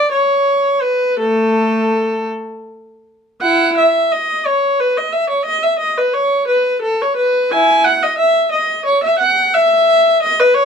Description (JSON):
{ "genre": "classical, baroque-style suite movement for unaccompanied viola", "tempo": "53-60 BPM (dotted quarters)", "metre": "6/8", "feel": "rubato", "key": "A major, E major from 3.4 s", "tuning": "A4 = 443 Hz", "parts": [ { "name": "rich viola", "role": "solo", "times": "0.0-10.7 s", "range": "A3 to G#5", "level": "-12 LUFS", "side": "equal", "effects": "none" } ], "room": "light reverb", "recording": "dark, warm production", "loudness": "-12 LUFS", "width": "side -6 dB against mid", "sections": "0.0-3.4 A section; 3.4-10.7 A section", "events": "none", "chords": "none", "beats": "0.10 | 1.20 2.30 | 3.40 4.44 | 5.46 6.48 | 7.51 8.52 | 9.54 10.55" }